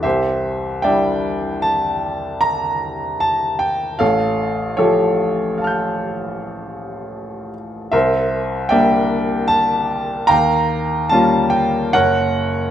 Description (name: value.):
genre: classical, impressionist solo piano.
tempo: 76 BPM.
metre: 5/4.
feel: rubato.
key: unclear.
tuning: A4 = 440 Hz.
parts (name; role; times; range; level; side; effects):
clear baby grand piano; solo; 0.0-12.7 s; F#1 to G6; -16 LUFS; equal; none.
room: light reverb.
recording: close, detailed microphones.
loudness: -15 LUFS.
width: side -10 dB against mid.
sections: 0.0-12.7 A section.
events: none.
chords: 0.0 Cadd9; 4.0 Aaug7; 7.9 C9; 10.3 Eb9; 11.9 F#.